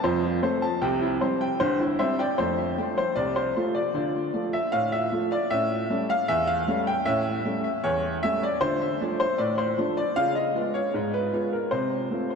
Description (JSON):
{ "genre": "ragtime piano", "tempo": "77 BPM", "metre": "2/4", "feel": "straight", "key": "F major", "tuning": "A4 = 440 Hz", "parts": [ { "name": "warm baby grand piano", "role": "solo", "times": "0.0-12.4 s", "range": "G1 to A5", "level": "-23 LUFS", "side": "equal", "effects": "ping-pong delay" } ], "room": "wet cathedral reverb, RT60 5.3 s", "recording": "dreamy mix soaked in reverb", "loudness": "-23 LUFS", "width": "side -5 dB against mid", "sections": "0.0-2.4 A section; 2.4-12.4 B section", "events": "none", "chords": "0.0 F; 0.8 C; 2.4 F; 4.0 Dm; 5.5 A7; 8.6 Dm; 10.2 Db7; 11.7 F/C" }